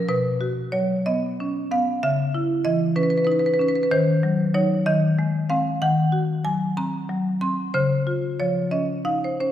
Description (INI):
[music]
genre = classical, contemporary piece for solo marimba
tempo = 62 BPM (dotted quarters)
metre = 6/8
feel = rubato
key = unclear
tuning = A4 = 444 Hz
[part]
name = marimba with medium hard mallets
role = solo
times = 0.0-9.5 s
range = B2 to C6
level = -20 LUFS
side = equal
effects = none
[sound]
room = wet scoring stage reverb, RT60 1.9 s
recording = heard from further back in the room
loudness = -20 LUFS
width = side -11 dB against mid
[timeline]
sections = 0.0-9.5 A section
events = none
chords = 0.1 Badd9; 2.0 Dbm9; 3.9 Ebm6; 4.9 Ab/Eb; 5.8 Ebm6; 7.7 Dbmaj9